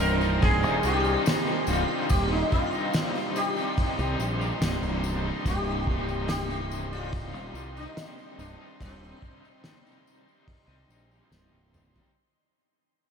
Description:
psychedelic rock; 72 BPM; 4/4; straight; C minor; A4 = 440 Hz
sitar; melody; 0.0-11.3 s; C4 to Bb4; -30 LUFS; left 1 dB; ping-pong delay
overdriven combo organ; sustained chords; 0.0-12.1 s; Eb3 to C6; -38 LUFS; right 5 dB
raw garage guitar; riff; 0.0-12.1 s; C2 to Eb4; -32 LUFS; left 1 dB; overdrive, tremolo
fuzz picked electric bass; bass; 0.0-12.0 s; C1 to C2; -30 LUFS; equal; overdrive
tambourine; percussion; 0.0-12.1 s; -46 LUFS; left 13 dB
cloth-damped thuddy drum kit; drums; 0.4-12.1 s; hi-hat, kick drum, snare drum, toms; -29 LUFS; equal
moderate huge ambient reverb, RT60 8.9 s; dreamy mix soaked in reverb; -24 LUFS; side -6 dB against mid
0.0-12.1 A section
fade-out 0.0-12.1; drum fill 11.3-12.1
0.0 Cm

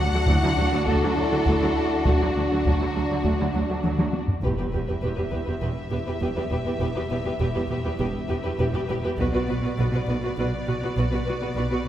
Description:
cinematic, epic orchestral film score; 101 BPM; 4/4; straight; E minor; A4 = 439 Hz
rich symphonic violin section; melody; 0.0-11.9 s; F#4 to F#5; -32 LUFS; left 2 dB
warm symphonic violin section; second line; 0.0-11.8 s; D4 to B4; -30 LUFS; left 1 dB
warm symphonic viola section; accompaniment; 0.0-11.8 s; D3 to G4; -30 LUFS; right 1 dB
mellow French horn section; sustained chords; 0.0-4.1 s; D4 to F#4; -29 LUFS; equal
rich studio double bass section; bass; 0.0-11.9 s; E1 to D2; -29 LUFS; right 1 dB
rich symphonic cello section; bass; 0.0-11.9 s; D2 to B2; -29 LUFS; right 1 dB
taiko ensemble; drums; 0.3-5.6, 9.2-10.3 s; -26 LUFS; equal
impact and reverse cymbal; sound effects; 4.4-6.8, 11.6-11.9 s; -35 LUFS; equal
wet scoring stage reverb, RT60 1.5 s; heard from further back in the room; -22 LUFS; side -11 dB against mid
0.0-4.4 A section; 4.4-11.9 B section
drum fill 3.8-4.4; impact 4.4-6.8
0.0 D; 4.4 Em; 9.2 Bm

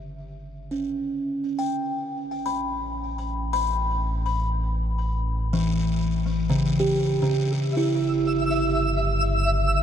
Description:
ambient; 62 BPM; 3/4; straight; A4 = 440 Hz
buzzing kalimba; arpeggios; 0.0-9.8 s; C#3 to B5; -24 LUFS; equal; tape echo
deep rumbling drone; bass; 0.0-9.8 s; G1 to A1; -27 LUFS; equal; built-in reverb
twinkling granular texture; texture; 7.7-9.8 s; E5 to E6; -26 LUFS; equal; built-in reverb
moderate huge ambient reverb, RT60 7.9 s; dark, warm production; -22 LUFS; side -9 dB against mid
0.0-9.8 A section
fade-in on kalimba 0.0-9.8; fade-in on synth drone 0.0-9.8
0.0 G5; 1.6 A7; 7.4 C#dim/G

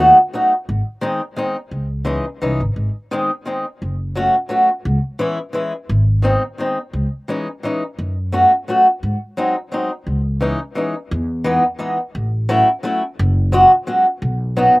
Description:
musette waltz; 173 BPM; 3/4; straight; C# harmonic minor, E major from 11.1 s; A4 = 440 Hz
fingerpicked swing-style acoustic guitar; accompaniment; 0.0-14.8 s; D#3 to F#4; -14 LUFS; equal
upright bass; bass; 0.0-14.7 s; F#1 to G#2; -18 LUFS; equal
little or no reverb; recorded outdoors, with no room sound; -16 LUFS; side -22 dB against mid
0.0-11.1 A section; 11.1-14.8 B section
break 10.8-11.1
0.0 D#dim; 0.7 G#; 1.7 C#madd9; 2.8 G#; 3.8 F#m; 4.9 C#m; 5.9 G#; 6.9 C#madd9; 8.0 F#m; 9.0 G#7; 10.1 C#madd9; 11.1 Emaj7; 12.1 A6; 13.2 F#sus2; 14.2 B

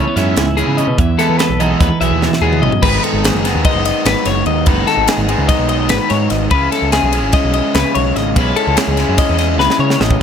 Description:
math rock and midwest emo; 293 BPM (eighths); 9/8; straight; A4 = 440 Hz
twelve-string electric guitar; accompaniment; 0.0-2.8 s; E2 to A4; -17 LUFS; right 8 dB; wide subtle chorus
twelve-string electric guitar; arpeggios; 0.0-10.2 s; G#4 to E5; -18 LUFS; left 9 dB; vibrato effect
raw garage guitar; riff; 0.0-10.2 s; G#2 to E4; -18 LUFS; right 1 dB; overdrive
growling picked electric bass; bass; 0.0-10.2 s; F#1 to E3; -18 LUFS; equal; overdrive
crisp fusion drum kit; drums; 0.2-10.2 s; crash cymbal, hi-hat, kick drum, ride cymbal, snare drum, toms; -18 LUFS; equal
little or no reverb; -12 LUFS; side -8 dB against mid
0.0-2.8 A section; 2.8-10.2 B section
drum fill 2.2-2.8, 9.6-10.2
0.0 C#m7; 1.0 Emaj7; 2.8 G#m7; 6.5 C#m9

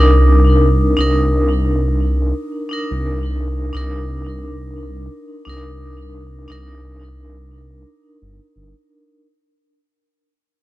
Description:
trip hop; 87 BPM; 4/4; swing 60% on 16ths; C minor; A4 = 440 Hz
vibraphone with hard mallets; accompaniment; 0.0-9.3 s; D4 to Bb4; -20 LUFS; equal; tremolo, vintage 12-bit sampler grit, tape echo
dark detuned saw bass; bass; 0.0-8.7 s; G1 to C2; -16 LUFS; equal
digital ambience; echo-heavy mix; -14 LUFS; side -17 dB against mid
0.0-9.2 A section
fade-out 0.0-9.2
0.0 Cm9

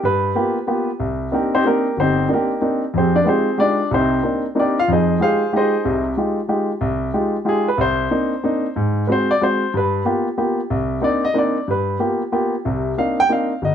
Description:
jazz; 185 BPM; 3/4; swing 64% on 8ths; C minor; A4 = 440 Hz
warm grand piano; solo; 0.0-13.7 s; G1 to G5; -17 LUFS; equal
light reverb; close, detailed microphones; -17 LUFS; side -8 dB against mid
1.0-12.6 A section; 12.6-13.7 A section
grand piano solo 1.0-13.7
0.0 G7#9; 1.0 Cm9; 2.9 Fm9; 3.9 Cm9; 4.9 Fm9; 7.8 Cm9; 8.8 Ab7; 9.7 G7#9; 10.7 Cm9; 11.7 G7#9; 12.6 Cm9

